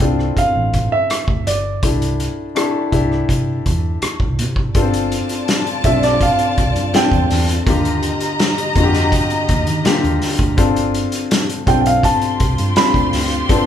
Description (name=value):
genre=lush 1970s-style soul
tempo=82 BPM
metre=4/4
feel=straight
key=unclear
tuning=A4 = 439 Hz
part: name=warm grand piano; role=melody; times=0.0-13.3 s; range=D5 to B5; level=-18 LUFS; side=right 3 dB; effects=none
part: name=warm grand piano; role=accompaniment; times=0.0-13.7 s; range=D3 to A4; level=-20 LUFS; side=left 4 dB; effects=none
part: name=vintage muted fingered electric bass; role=bass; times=0.0-13.7 s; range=G1 to Eb3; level=-21 LUFS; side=equal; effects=none
part: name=vintage drum kit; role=drums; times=0.0-13.7 s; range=hi-hat, kick drum, rim click, snare drum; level=-19 LUFS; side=equal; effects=none
part: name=warm studio string section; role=second line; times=4.7-13.7 s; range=F4 to C6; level=-22 LUFS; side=left 1 dB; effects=none
room=moderate large studio reverb, RT60 1.0 s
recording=band playing live in one room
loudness=-14 LUFS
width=side -9 dB against mid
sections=0.0-4.7 A section; 4.7-13.7 B section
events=none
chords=0.0 Dm7; 1.8 C6; 4.7 G7sus4; 7.7 Ebmaj7; 10.6 G7sus4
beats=0.37 1.10 | 1.83 2.56 3.29 4.02 | 4.75 5.47 6.21 6.93 | 7.66 8.39 9.12 9.85 | 10.58 11.31 12.04 12.77 | 13.50